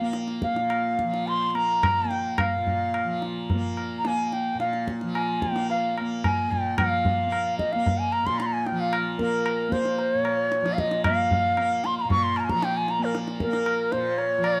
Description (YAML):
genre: indian classical, Hindustani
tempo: 106-116 BPM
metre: 4/4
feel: straight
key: Bb raga kafi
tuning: A4 = 440 Hz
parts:
  - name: bansuri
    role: melody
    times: 0.0-14.6 s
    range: Bb4 to Db6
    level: -27 LUFS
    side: equal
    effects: none
  - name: tanpura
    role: drone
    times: 0.0-14.6 s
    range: Bb2 to Bb3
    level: -32 LUFS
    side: equal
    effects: none
  - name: tabla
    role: percussion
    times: 0.1-14.6 s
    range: none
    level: -31 LUFS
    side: equal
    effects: none
room: light reverb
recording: none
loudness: -25 LUFS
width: mono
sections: 0.0-6.8 A section; 6.8-14.6 B section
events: speeding up 0.0-14.6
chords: none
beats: | 0.14 0.71 1.27 1.83 | 2.38 2.94 3.49 4.04 | 4.59 5.14 5.69 6.23 | 6.78 7.32 7.86 8.39 | 8.93 9.46 10.00 10.53 | 11.05 11.58 12.11 12.63 | 13.15 13.67 14.19